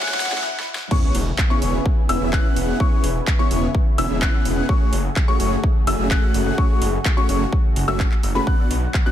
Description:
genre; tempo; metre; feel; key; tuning
EDM, festival progressive house; 127 BPM; 4/4; straight; unclear; A4 = 441 Hz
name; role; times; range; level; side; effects
lush unison pad; sustained chords; 0.0-9.1 s; C#3 to G#4; -29 LUFS; equal; chorus, phaser, sidechain pumping
big-room dance drum kit; drums; 0.0-9.0 s; crash cymbal, handclaps, hi-hat, snare drum; -27 LUFS; equal; overdrive
riser, swell and impact; sound effects; 0.0-2.8 s; none; -29 LUFS; equal; none
dense compressed supersaw; riff; 0.3-9.1 s; A3 to F#5; -25 LUFS; equal; sidechain pumping, dub echo
clear baby grand piano; arpeggios; 0.9-9.1 s; B5 to F#6; -27 LUFS; left 4 dB; sidechain pumping, dub echo
electronic kick drum; drums; 0.9-9.0 s; none; -18 LUFS; equal; overdrive, high-pass filter on kick
wide detuned saw bass; bass; 1.1-8.9 s; E1 to B1; -23 LUFS; equal; chorus, sidechain pumping
room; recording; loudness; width
light reverb; high-pass filter; -17 LUFS; side -11 dB against mid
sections
0.9-9.1 A section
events
drum fill 0.0-0.4, 0.4-0.9; riser 0.0-0.4; swell 0.0-0.9; stop 0.4-0.9; drop 0.9-9.1; impact 0.9-2.8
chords
0.0 F#madd9; 0.9 E6; 4.7 F#madd9; 8.5 Bm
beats
0.44 | 0.91 1.39 1.86 2.33 | 2.80 3.27 3.75 4.22 | 4.69 5.16 5.64 6.11 | 6.58 7.05 7.53 8.00 | 8.47 8.94

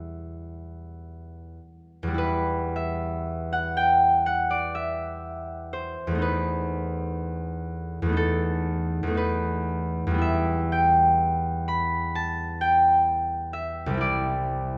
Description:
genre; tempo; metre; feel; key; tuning
classical, solo harp piece; 50-66 BPM; 4/4; rubato; E minor; A4 = 440 Hz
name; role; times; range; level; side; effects
concert harp; solo; 0.0-14.8 s; C2 to B5; -26 LUFS; equal; none
room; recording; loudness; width
moderate recital hall reverb, RT60 1.6 s; none; -25 LUFS; mono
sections
0.0-2.2 A section; 2.2-14.8 A section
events
none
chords
0.0 Em; 6.2 B7/E; 10.2 Em; 14.0 C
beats
1.03 | 2.18 3.27 4.26 5.25 | 6.23 7.19 8.17 9.17 | 10.21 11.19 12.14 13.07 | 14.01

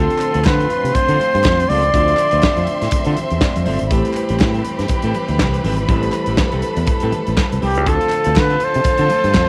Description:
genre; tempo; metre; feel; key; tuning
disco; 121 BPM; 4/4; swing 56% on 16ths; unclear; A4 = 443 Hz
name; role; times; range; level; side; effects
breathy flugelhorn; melody; 0.0-3.2, 7.6-9.5 s; G4 to D5; -19 LUFS; equal; none
warm studio violin section; second line; 0.0-9.5 s; C4 to C6; -28 LUFS; equal; none
mellow tine electric piano; accompaniment; 0.0-9.5 s; D3 to E5; -30 LUFS; equal; overdrive
semi-hollow electric guitar; accompaniment; 0.0-9.4 s; C4 to B4; -32 LUFS; equal; subtle chorus
clear studio string section; sustained chords; 0.0-9.5 s; D3 to E5; -28 LUFS; equal; none
fingered electric bass; bass; 0.0-9.5 s; G1 to D3; -22 LUFS; equal; none
modern studio drum kit; drums; 0.1-9.5 s; hi-hat, kick drum, snare drum; -22 LUFS; equal; none
group handclap; percussion; 0.2-9.5 s; none; -35 LUFS; equal; none
congas; percussion; 0.5-9.5 s; none; -30 LUFS; equal; none
room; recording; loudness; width
light reverb, studio reverb; none; -17 LUFS; mono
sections
0.0-9.5 A section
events
tine electric piano fill 2.9-3.9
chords
0.0 Dm7; 3.9 Am7; 7.9 Dm7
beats
0.45 0.94 1.44 | 1.93 2.43 2.92 3.42 | 3.91 4.41 4.90 5.39 | 5.89 6.38 6.88 7.37 | 7.87 8.36 8.85 9.35

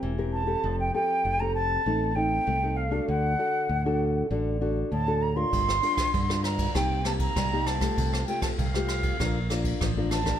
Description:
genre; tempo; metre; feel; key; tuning
samba and choro; 98 BPM; 4/4; straight; unclear; A4 = 443 Hz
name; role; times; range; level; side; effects
mellow concert flute; melody; 0.0-10.4 s; F5 to C6; -28 LUFS; equal; none
nylon-string guitar; accompaniment; 0.0-10.4 s; A2 to Bb4; -30 LUFS; left 1 dB; none
fingered electric bass; bass; 0.0-10.3 s; E1 to G2; -29 LUFS; equal; none
jazz brush drum kit; drums; 5.5-10.4 s; kick drum, ride cymbal, rim click; -29 LUFS; right 1 dB; none
room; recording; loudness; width
light reverb; none; -24 LUFS; side -10 dB against mid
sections
0.0-10.4 A section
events
none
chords
0.0 C7/E; 0.6 Fadd9; 1.9 Adim; 3.1 D; 5.5 Gm7; 6.8 Cm7; 8.0 Fadd9/C; 9.2 Bb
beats
0.02 | 0.64 1.25 1.86 2.47 | 3.08 3.69 4.31 4.92 | 5.53 6.14 6.75 7.37 | 7.98 8.59 9.20 9.81

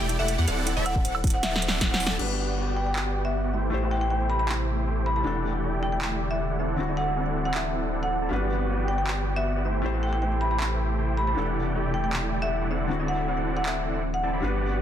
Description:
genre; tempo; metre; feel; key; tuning
future bass; 157 BPM; 4/4; half-time; G major; A4 = 440 Hz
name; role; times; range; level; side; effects
thumb-piano-like synth pluck; arpeggios; 0.0-2.2 s; E4 to F#5; -40 LUFS; left 5 dB; chorus, sidechain pumping, tape echo
wide unison pluck; arpeggios; 0.0-2.2 s; E5 to A5; -37 LUFS; right 1 dB; none
supersaw chords; riff; 0.0-14.8 s; A3 to B5; -30 LUFS; right 1 dB; sidechain pumping, low-pass filter
saturated sub bass; bass; 0.0-14.8 s; D1 to E2; -29 LUFS; equal; sidechain pumping
big-room dance drum kit; drums; 0.1-13.7 s; crash cymbal, handclaps, hi-hat, snare drum, woodblock; -31 LUFS; right 1 dB; none
marimba with medium hard mallets; melody; 0.2-14.4 s; E5 to B5; -31 LUFS; equal; vintage 12-bit sampler grit, sidechain pumping, digital delay
electronic kick drum; drums; 1.0-1.9 s; none; -24 LUFS; equal; none
felt-muted upright piano; accompaniment; 2.2-14.8 s; D3 to C5; -34 LUFS; left 4 dB; sidechain pumping, tape echo
shimmering ambient pad; sustained chords; 3.1-14.8 s; C3 to C4; -35 LUFS; equal; chorus, built-in reverb, vintage 12-bit sampler grit, sidechain pumping
room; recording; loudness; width
light reverb; dense, heavily limited modern master; -24 LUFS; side -10 dB against mid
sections
0.0-2.2 A section; 2.2-14.8 B section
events
drop 0.0-2.2; drum fill 1.4-2.2; filter sweep on ambient pad 2.2-14.8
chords
0.0 Em11; 0.7 D9; 2.2 Gmaj7; 3.7 Am7; 5.3 Em11; 6.8 D9; 8.3 Gmaj7; 9.8 Am7; 11.4 Em11; 12.9 D9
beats
0.28 | 0.67 1.05 1.43 1.81 | 2.19 2.58 2.96 3.34 | 3.72 4.11 4.49 4.87 | 5.25 5.63 6.02 6.40 | 6.78 7.16 7.54 7.93 | 8.31 8.69 9.07 9.46 | 9.84 10.22 10.60 10.98 | 11.37 11.75 12.13 12.51 | 12.89 13.28 13.66 14.04 | 14.42 14.81

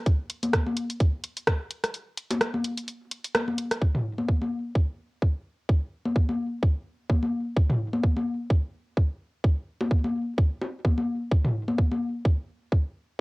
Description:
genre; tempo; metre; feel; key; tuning
techno; 128 BPM; 4/4; swing 56% on 16ths; none; none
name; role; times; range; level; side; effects
electronic kick drum; drums; 0.1-12.8 s; none; -22 LUFS; equal; small room reverb
garage drum kit; drums; 0.1-3.8 s; hi-hat, rim click; -26 LUFS; equal; low-pass filter on hats, small room reverb, low-pass filter on snare
electronic congas, bongos and toms; percussion; 0.4-12.0 s; none; -28 LUFS; left 1 dB; small room reverb
room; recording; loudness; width
little or no reverb; home recording on cassette; -24 LUFS; side -23 dB against mid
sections
0.0-3.8 A section; 3.8-13.2 B section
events
drop 0.0-3.8; break 1.9-3.8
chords
none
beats
| 0.07 0.53 1.00 1.47 | 1.94 2.41 2.88 3.35 | 3.81 4.28 4.75 5.22 | 5.69 6.16 6.63 7.10 | 7.57 8.03 8.50 8.97 | 9.44 9.91 10.38 10.85 | 11.31 11.78 12.25 12.72

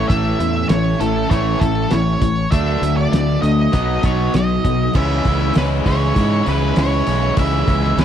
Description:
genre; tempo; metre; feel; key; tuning
classic rock; 99 BPM; 4/4; straight; unclear; A4 = 441 Hz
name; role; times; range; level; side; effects
octave-fuzz lead guitar; melody; 0.0-8.0 s; A4 to E5; -22 LUFS; right 1 dB; distortion
overdriven electric guitar; riff; 0.0-8.0 s; A2 to E4; -22 LUFS; left 10 dB; none
raw garage guitar; riff; 0.0-8.0 s; A2 to E4; -22 LUFS; right 12 dB; overdrive
growling fingered electric bass; bass; 0.0-8.0 s; A1 to G#2; -20 LUFS; equal; overdrive
cloth-damped thuddy drum kit; drums; 0.1-8.0 s; crash cymbal, hi-hat, kick drum, snare drum; -20 LUFS; equal; none
picked twelve-string acoustic guitar; accompaniment; 4.9-8.0 s; C#3 to E4; -29 LUFS; left 7 dB; none
room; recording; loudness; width
small room ambience; dry, close 1970s-style studio recording; -14 LUFS; side -9 dB against mid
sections
0.0-5.0 A section; 5.0-8.0 B section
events
none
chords
0.0 A; 2.5 D; 3.7 B; 5.0 C#m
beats
| 0.11 0.71 1.32 1.93 | 2.53 3.14 3.74 4.35 | 4.95 5.56 6.16 6.77 | 7.37 7.98

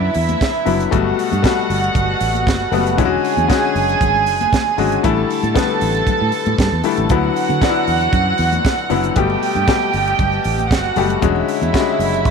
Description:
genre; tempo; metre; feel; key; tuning
disco; 116 BPM; 4/4; straight; D major; A4 = 440 Hz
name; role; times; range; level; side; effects
dark studio violin section; second line; 0.0-12.3 s; E4 to A5; -19 LUFS; right 5 dB; slapback echo
bright baby grand piano; accompaniment; 0.0-12.3 s; B2 to G4; -19 LUFS; left 11 dB; none
fingered electric bass; bass; 0.0-12.3 s; E1 to D3; -20 LUFS; right 2 dB; none
tight funk drum kit; drums; 0.1-12.3 s; hi-hat, kick drum, snare drum; -21 LUFS; right 2 dB; none
congas; percussion; 0.3-12.3 s; none; -28 LUFS; left 12 dB; none
room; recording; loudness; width
light reverb, small room ambience; 1960s-style stereo; -14 LUFS; side -5 dB against mid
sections
0.0-12.3 A section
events
none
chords
0.0 D69; 0.9 Gmaj9; 3.0 E13; 5.0 A7sus4; 7.1 D69; 9.2 Gmaj9; 11.2 E13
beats
0.41 | 0.92 1.44 1.95 2.47 | 2.98 3.50 4.01 4.53 | 5.04 5.56 6.07 6.59 | 7.10 7.62 8.13 8.65 | 9.16 9.68 10.20 10.71 | 11.23 11.74 12.26

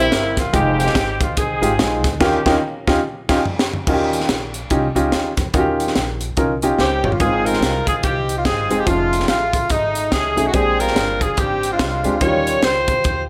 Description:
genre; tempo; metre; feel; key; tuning
uptempo gospel; 144 BPM; 4/4; swing 61% on 8ths; unclear; A4 = 440 Hz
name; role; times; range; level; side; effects
dark horn section; melody; 0.0-3.0, 6.8-13.3 s; G3 to Db5; -24 LUFS; equal; none
warm upright piano; accompaniment; 0.0-12.8 s; Ab2 to Db5; -22 LUFS; equal; none
upright bass; bass; 0.0-13.3 s; Fb1 to F2; -28 LUFS; equal; none
crisp fusion drum kit; drums; 0.1-13.2 s; crash cymbal, hi-hat, kick drum, snare drum, toms; -24 LUFS; equal; none
breathy alto saxophone; melody; 6.8-13.2 s; Eb4 to Db5; -24 LUFS; equal; none
room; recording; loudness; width
light reverb, studio reverb; none; -18 LUFS; mono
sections
0.0-3.9 A section; 3.9-7.2 B section; 7.2-13.3 C section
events
drum fill 2.2-3.9, 6.8-7.2; band accent 2.2-3.9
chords
0.0 C7; 0.5 Fm9; 2.2 Eb9; 7.2 Ab6; 8.9 F7alt; 10.5 Bb13; 12.2 Eb9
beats
0.12 | 0.54 0.95 1.37 1.79 | 2.20 2.62 3.04 3.45 | 3.87 4.29 4.70 5.12 | 5.54 5.95 6.37 6.79 | 7.20 7.62 8.04 8.46 | 8.87 9.29 9.71 10.12 | 10.54 10.96 11.38 11.79 | 12.21 12.63 13.05

